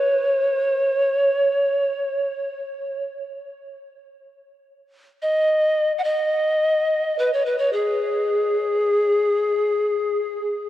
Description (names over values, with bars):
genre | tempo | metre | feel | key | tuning
world meditative, free-time meditation music | free time | none | none | G# minor pentatonic | A4 = 440 Hz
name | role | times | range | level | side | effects
breathy bright pan flute | solo | 0.0-10.7 s | G#4 to F#5 | -19 LUFS | equal | none
room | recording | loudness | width
wet huge ambient reverb, RT60 4.7 s | worn, warbling old tape, cassette tape, warbly pitch drift | -19 LUFS | side -13 dB against mid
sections
0.0-10.7 A section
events
none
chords
none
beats
free time